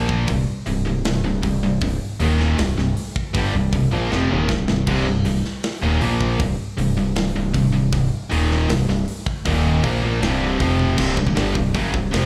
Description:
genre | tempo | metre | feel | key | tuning
heavy metal | 157 BPM | 4/4 | straight | C minor | A4 = 440 Hz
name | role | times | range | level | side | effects
distorted electric guitar | riff | 0.0-12.3 s | C2 to Bb3 | -27 LUFS | equal | overdrive, slapback echo
distorted electric guitar | riff | 0.0-12.3 s | C2 to Bb3 | -30 LUFS | equal | none
tight distorted guitar | riff | 0.0-12.3 s | C2 to Bb3 | -27 LUFS | equal | distortion, slapback echo
fat analog bass | bass | 0.0-12.3 s | C1 to Bb1 | -24 LUFS | equal | none
tight metal drum kit | drums | 0.1-12.2 s | crash cymbal, hi-hat, kick drum, snare drum, toms | -28 LUFS | equal | none
room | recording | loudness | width
small room ambience | live gig heard through the venue's PA, club reverb | -20 LUFS | mono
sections
0.0-11.0 A section; 11.0-12.3 B section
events
half time 0.0-11.0; drum fill 4.1-4.9, 10.8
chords
0.3 C5; 2.2 Eb5; 2.6 Cm; 6.0 Bb5; 6.4 C5; 8.3 Eb5; 8.7 C5; 9.5 Eb5; 9.8 C5; 10.6 F5; 11.0 C5

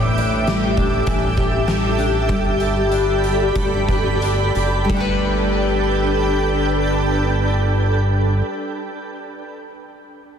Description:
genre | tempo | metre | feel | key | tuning
dream pop | 87-102 BPM | 4/4 | straight | G major | A4 = 440 Hz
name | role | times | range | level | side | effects
shimmering ambient pad | sustained chords | 0.0-8.4 s | D4 to D6 | -22 LUFS | right 3 dB | chorus, built-in reverb
fingerpicked twelve-string acoustic guitar | arpeggios | 0.0-9.0 s | A2 to B4 | -22 LUFS | left 4 dB | analog chorus, digital delay
fat analog bass | bass | 0.0-8.4 s | F#1 to A1 | -21 LUFS | equal | none
oversized low-tuned drum kit | drums | 0.2-5.1 s | hi-hat, kick drum, ride cymbal, snare drum | -25 LUFS | equal | none
room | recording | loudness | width
light reverb, small room ambience | dense, heavily limited modern master | -16 LUFS | side -8 dB against mid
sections
0.0-4.9 A section; 4.9-7.7 B section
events
slowing down 0.0-4.9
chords
0.0 A7sus4; 2.3 Gadd9

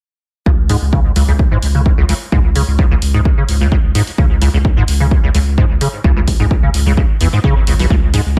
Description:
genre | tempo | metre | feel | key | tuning
acid house | 129 BPM | 4/4 | straight | unclear | A4 = 440 Hz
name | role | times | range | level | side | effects
liquid acid bass | riff | 0.5-8.4 s | B1 to C#3 | -18 LUFS | equal | tube saturation, ensemble chorus, sidechain pumping, analog delay
saturated sub bass | bass | 0.5-8.4 s | G#1 to C#2 | -18 LUFS | equal | sidechain pumping
electronic kick drum | drums | 0.5-8.4 s | none | -16 LUFS | equal | none
electronic hi-hat | drums | 0.7-8.2 s | none | -27 LUFS | equal | none
room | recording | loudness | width
digital ambience | echo-heavy mix | -13 LUFS | mono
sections
0.5-8.4 A section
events
none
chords
0.5 C#5

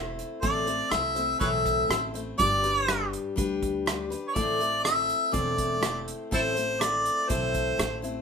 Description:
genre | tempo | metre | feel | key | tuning
honky-tonk and classic country | 122 BPM | 4/4 | straight | A minor | A4 = 440 Hz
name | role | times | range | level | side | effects
picked steel-string acoustic guitar | accompaniment | 0.0-8.2 s | A2 to C5 | -31 LUFS | left 3 dB | none
upright bass | bass | 0.0-8.2 s | E1 to D2 | -36 LUFS | right 2 dB | none
unplugged drum kit | drums | 0.2-8.2 s | hi-hat, kick drum, rim click | -31 LUFS | right 2 dB | none
warm harmonica | melody | 0.4-8.0 s | E4 to E5 | -26 LUFS | equal | none
room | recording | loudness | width
moderate studio reverb, RT60 0.7 s | minimal, uncompressed stereo recording | -24 LUFS | side -6 dB against mid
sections
0.0-8.2 A section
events
none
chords
0.0 Am; 2.4 G; 4.4 Am

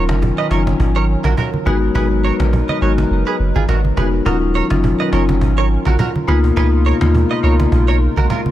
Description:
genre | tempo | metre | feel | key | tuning
afrobeats | 104 BPM | 4/4 | swing 55% on 16ths | Eb minor | A4 = 436 Hz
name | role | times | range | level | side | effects
marimba with medium mallets | accompaniment | 0.0-7.7 s | Gb3 to Gb4 | -20 LUFS | left 6 dB | none
hollow soft pad | sustained chords | 0.0-8.5 s | Cb3 to Cb5 | -23 LUFS | right 2 dB | chorus
direct-recorded clean electric guitar | riff | 0.0-8.4 s | F4 to Eb5 | -23 LUFS | right 7 dB | lush chorus, ping-pong delay
punchy sub bass | bass | 0.0-8.3 s | Eb1 to Eb2 | -16 LUFS | equal | none
cajon | drums | 0.1-8.5 s | none | -26 LUFS | equal | none
congas | percussion | 0.1-8.5 s | none | -22 LUFS | right 2 dB | none
room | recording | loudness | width
small room ambience | none | -13 LUFS | side -13 dB against mid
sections
0.0-4.3 A section; 4.3-8.5 B section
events
kick muted 3.1-4.3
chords
0.0 Ebm9; 1.7 Abm7; 4.3 Ebm9; 6.3 Db13

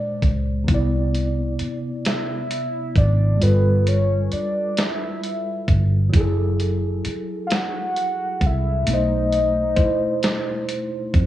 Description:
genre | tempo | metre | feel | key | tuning
slow six-eight R&B | 44 BPM (dotted quarters) | 6/8 | straight | unclear | A4 = 440 Hz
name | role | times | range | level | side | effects
soft octave-layered synth lead | melody | 0.0-10.7 s | B4 to F#5 | -24 LUFS | left 1 dB | chorus, slapback echo
mellow tine electric piano | accompaniment | 0.0-11.3 s | A#2 to D5 | -25 LUFS | equal | medium stereo tremolo
vintage muted fingered electric bass | bass | 0.2-11.3 s | F#1 to F2 | -20 LUFS | equal | none
dusty soul sampler-style drum kit | drums | 0.2-11.3 s | hi-hat, kick drum, snare drum | -22 LUFS | equal | none
room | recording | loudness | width
little or no reverb | worn, warbling old tape, cassette tape, warbly pitch drift | -19 LUFS | side -13 dB against mid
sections
0.0-11.3 A section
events
none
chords
0.0 A#9; 0.7 Cmaj9; 3.4 G9; 6.1 F#m9; 8.9 B7b9

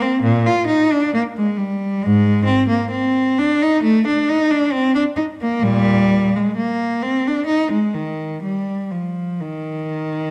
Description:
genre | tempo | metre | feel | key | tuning
classical, baroque-style suite movement for unaccompanied cello | 60-68 BPM | 4/4 | rubato | Eb major | A4 = 441 Hz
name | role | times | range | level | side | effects
rich cello | solo | 0.0-10.3 s | Ab2 to F4 | -18 LUFS | equal | none
room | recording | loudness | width
wet recital hall reverb, RT60 1.5 s | dark, warm production | -18 LUFS | mono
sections
0.0-10.3 A section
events
none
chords
none

